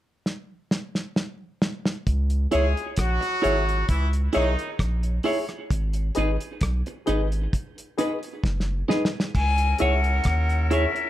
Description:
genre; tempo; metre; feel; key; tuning
roots reggae; 66 BPM; 4/4; straight; unclear; A4 = 440 Hz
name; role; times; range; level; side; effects
cloth-damped thuddy drum kit; drums; 0.3-11.1 s; crash cymbal, hi-hat, kick drum, rim click, snare drum; -26 LUFS; equal; none
soft dub sub bass; bass; 2.1-10.9 s; F#1 to D#2; -23 LUFS; equal; none
warm horn section; second line; 2.5-11.1 s; D#3 to A#4; -29 LUFS; equal; tube saturation, tape echo
clean electric guitar; accompaniment; 2.5-11.0 s; D#4 to C#5; -27 LUFS; right 3 dB; spring reverb, tape echo
reed electric piano; stabs; 2.5-10.9 s; G#4 to E5; -29 LUFS; left 5 dB; none
bright concert flute; melody; 9.4-11.1 s; E5 to G#5; -25 LUFS; left 5 dB; tape echo
room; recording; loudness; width
light reverb; none; -22 LUFS; side -13 dB against mid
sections
0.0-2.1 A section; 2.1-9.3 B section; 9.3-11.1 C section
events
drum fill 0.3-2.1, 8.4-9.3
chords
0.0 N.C.; 2.1 C#m; 5.7 G#m; 9.3 C#m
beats
0.25 1.16 | 2.07 2.98 3.89 4.80 | 5.71 6.62 7.52 8.43 | 9.34 10.25

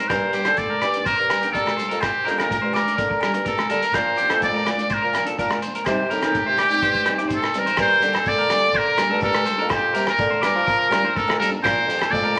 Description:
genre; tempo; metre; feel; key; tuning
highlife guitar band; 125 BPM; 4/4; straight; G minor; A4 = 441 Hz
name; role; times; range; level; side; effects
trumpet with metal mute; melody; 0.0-12.4 s; G4 to D5; -23 LUFS; equal; none
nylon-string guitar; accompaniment; 0.0-12.4 s; F3 to Eb4; -34 LUFS; equal; none
electric guitar at the edge of break-up; arpeggios; 0.0-12.4 s; G4 to D5; -28 LUFS; equal; none
mellow bassoon; bass; 0.1-12.4 s; F2 to G3; -30 LUFS; equal; none
cloth-damped thuddy drum kit; drums; 0.1-12.2 s; hi-hat, kick drum, rim click; -31 LUFS; equal; none
agogo bells; percussion; 0.1-12.4 s; none; -36 LUFS; equal; none
congas; percussion; 0.1-12.2 s; none; -37 LUFS; equal; none
shekere; percussion; 0.1-12.2 s; none; -40 LUFS; equal; none
room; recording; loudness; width
wet large studio reverb, RT60 1.1 s; none; -20 LUFS; mono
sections
0.0-7.8 A section; 7.8-12.4 B section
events
none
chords
0.1 Gm; 5.9 Cm; 7.8 Gm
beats
| 0.10 0.58 1.05 1.53 | 2.01 2.49 2.97 3.45 | 3.93 4.41 4.89 5.38 | 5.86 6.34 6.82 7.30 | 7.78 8.26 8.74 9.23 | 9.71 10.19 10.67 11.15 | 11.63 12.11

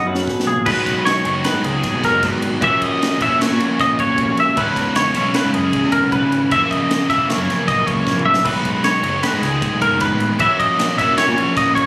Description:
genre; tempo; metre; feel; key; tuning
math rock and midwest emo; 154 BPM; 5/4; straight; unclear; A4 = 440 Hz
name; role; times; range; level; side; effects
electric guitar through a small old amp; accompaniment; 0.0-2.6 s; A#2 to G#4; -24 LUFS; right 1 dB; none
twangy electric guitar; arpeggios; 0.0-11.9 s; G#4 to E5; -18 LUFS; equal; analog chorus
growling picked electric bass; bass; 0.0-11.8 s; E1 to A#2; -24 LUFS; equal; overdrive
crisp fusion drum kit; drums; 0.2-11.9 s; crash cymbal, kick drum, ride cymbal, snare drum, toms; -24 LUFS; equal; none
cranked stack guitar; riff; 0.7-11.9 s; F#2 to G#4; -19 LUFS; equal; overdrive
room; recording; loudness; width
light reverb; recorded on a phone in the room, studio ambience, compression; -14 LUFS; side -22 dB against mid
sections
0.7-11.9 A section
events
drum fill 0.0-0.7, 8.1-8.5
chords
0.0 B6; 0.7 G#m7; 2.6 F#7; 4.6 C#m7/G#; 6.5 F#7; 8.5 G#m7; 10.4 F#7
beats
0.28 | 0.67 1.06 1.45 1.84 2.23 | 2.62 3.01 3.40 3.79 4.17 | 4.56 4.95 5.34 5.73 6.12 | 6.51 6.90 7.29 7.68 8.06 | 8.46 8.84 9.23 9.62 10.01 | 10.40 10.79 11.18 11.57

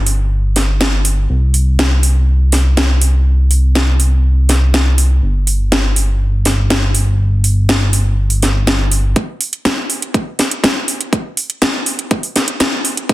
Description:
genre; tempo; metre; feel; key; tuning
nu-disco, nu disco; 122 BPM; 4/4; straight; unclear; A4 = 438 Hz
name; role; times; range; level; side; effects
chorused synth bass; bass; 0.0-9.1 s; G1 to C2; -12 LUFS; equal; none
house drum kit; drums; 0.1-13.1 s; hi-hat, snare drum; -16 LUFS; equal; none
electronic kick drum; drums; 9.2-13.1 s; none; -17 LUFS; equal; high-pass filter on kick, high-pass filter on room
room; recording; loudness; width
light reverb, digital ambience; dense, heavily limited modern master; -12 LUFS; side -17 dB against mid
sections
0.0-9.2 A section; 9.2-13.1 B section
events
build-up 9.2-13.1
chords
none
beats
0.31 0.80 | 1.29 1.79 2.28 2.77 | 3.26 3.75 4.25 4.74 | 5.23 5.72 6.21 6.71 | 7.20 7.69 8.18 8.67 | 9.16 9.66 10.15 10.64 | 11.13 11.62 12.12 12.61 | 13.10

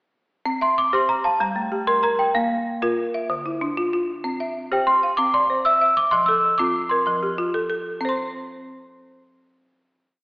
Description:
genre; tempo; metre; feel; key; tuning
southern african traditional, mbira-style interlocking cycle; 127 BPM (dotted quarters); 12/8; straight; C mixolydian; A4 = 441 Hz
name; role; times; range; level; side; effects
folk marimba with hard mallets; arpeggios; 0.5-10.2 s; D3 to C6; -24 LUFS; equal; none
worn celesta; melody; 0.6-7.6 s; F5 to E6; -19 LUFS; equal; none
room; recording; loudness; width
wet scoring stage reverb, RT60 1.7 s; heard from further back in the room, AM radio sound; -19 LUFS; side -28 dB against mid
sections
0.5-8.0 A section; 8.0-10.2 final note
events
none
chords
0.5 C; 1.4 Gm; 2.4 Bb5; 3.3 Dm; 4.2 C; 6.1 F; 8.0 N.C.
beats
| 0.45 0.93 1.40 1.88 | 2.35 2.82 3.30 3.77 | 4.24 4.71 5.18 5.65 | 6.12 6.59 7.07 7.54 | 8.01 8.48 8.95 9.42 | 9.89

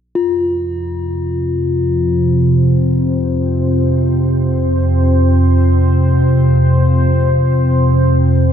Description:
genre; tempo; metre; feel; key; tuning
dark ambient drone; free time; none; none; unclear; A4 = 440 Hz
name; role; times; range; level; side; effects
deep dark ambient pad; sustained chords; 1.6-8.5 s; C4 to C5; -21 LUFS; left 2 dB; chorus, built-in reverb
analog drone; drone; 0.5-8.5 s; F2 to C3; -12 LUFS; right 1 dB; chorus
bronze singing bowl; texture; 0.2-8.5 s; F4; -22 LUFS; left 5 dB; none
room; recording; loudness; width
wet cathedral reverb, RT60 6.4 s; none; -12 LUFS; side -9 dB against mid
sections
0.2-8.5 A section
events
filter sweep on synth drone 0.2-8.5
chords
0.2 F5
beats
free time

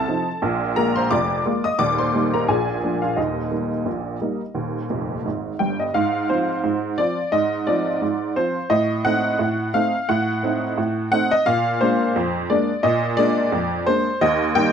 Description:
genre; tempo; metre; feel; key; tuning
ragtime piano; 87 BPM; 2/4; swing 56% on 16ths; unclear; A4 = 440 Hz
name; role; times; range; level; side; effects
honky-tonk upright piano; solo; 0.0-14.7 s; Eb1 to Eb6; -19 LUFS; equal; none
room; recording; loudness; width
light reverb; dark, warm production; -19 LUFS; side -7 dB against mid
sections
0.0-5.9 A section; 5.9-14.7 B section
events
honky-tonk piano fill 4.9-5.9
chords
0.4 Bb7; 1.8 Eb; 2.5 Bb7; 3.2 Eb; 5.9 Fm/Ab; 8.7 Adim7; 11.5 Bb7; 14.2 Eb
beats
| 0.41 1.10 | 1.79 2.48 | 3.17 3.86 | 4.56 5.25 | 5.95 6.64 | 7.33 8.01 | 8.70 9.39 | 10.08 10.77 | 11.46 12.15 | 12.84 13.53 | 14.22

